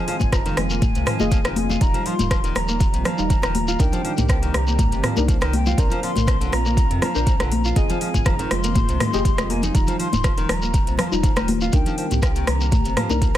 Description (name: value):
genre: afro house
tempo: 121 BPM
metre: 4/4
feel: swing 53% on 16ths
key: F dorian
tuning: A4 = 440 Hz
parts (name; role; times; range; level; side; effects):
- breathy mellow jazz flute; melody; 0.0-13.4 s; G5 to C6; -29 LUFS; left 1 dB; ping-pong delay
- warm analog pad; sustained chords; 0.0-13.4 s; D3 to G4; -30 LUFS; right 2 dB; chorus, sidechain pumping
- nylon-string guitar; arpeggios; 0.0-13.4 s; C3 to F4; -30 LUFS; equal; sidechain pumping, ping-pong delay
- deep mellow chord stab; stabs; 0.0-13.2 s; G3 to Eb5; -30 LUFS; left 2 dB; chorus, sidechain pumping, ping-pong delay
- afro-pop drum kit; drums; 0.1-13.4 s; hi-hat, rim click, toms; -26 LUFS; equal; studio reverb
- warm sub bass; bass; 0.2-13.4 s; Eb1 to F2; -25 LUFS; equal; sidechain pumping
- electronic kick drum; drums; 0.2-13.3 s; none; -20 LUFS; equal; studio reverb
- congas; percussion; 0.2-13.4 s; none; -27 LUFS; left 4 dB; none
- shekere; percussion; 0.2-13.4 s; none; -32 LUFS; left 3 dB; none
room: studio reverb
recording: none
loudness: -18 LUFS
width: side -12 dB against mid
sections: 0.0-13.4 A section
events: none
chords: 0.0 Fm7; 1.8 Ebadd9; 3.8 Cm7; 5.8 Bbadd9; 7.8 Fm7; 9.7 Ebadd9; 11.7 Cm7